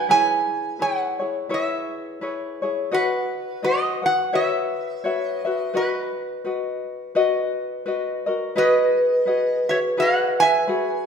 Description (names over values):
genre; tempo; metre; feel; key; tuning
Hawaiian; 85 BPM; 4/4; swing 58% on 8ths; B major; A4 = 440 Hz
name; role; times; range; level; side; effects
metal-body resonator slide guitar; melody; 0.0-11.1 s; B4 to G#5; -22 LUFS; right 2 dB; none
tenor ukulele; accompaniment; 0.0-11.1 s; E4 to F#5; -24 LUFS; left 4 dB; none
vibraphone with soft mallets; second line; 8.6-11.1 s; B4; -20 LUFS; right 2 dB; none
room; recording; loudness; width
wet recital hall reverb, RT60 1.5 s; minimal, uncompressed stereo recording; -20 LUFS; side -7 dB against mid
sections
0.0-8.6 A section; 8.6-11.1 B section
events
none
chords
0.1 C#m7; 2.9 B/F#; 4.3 F#7sus4; 5.7 B; 8.6 G#m7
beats
| 0.09 0.80 1.50 2.21 | 2.92 3.63 4.33 5.04 | 5.75 6.45 7.16 7.87 | 8.57 9.28 9.98 10.68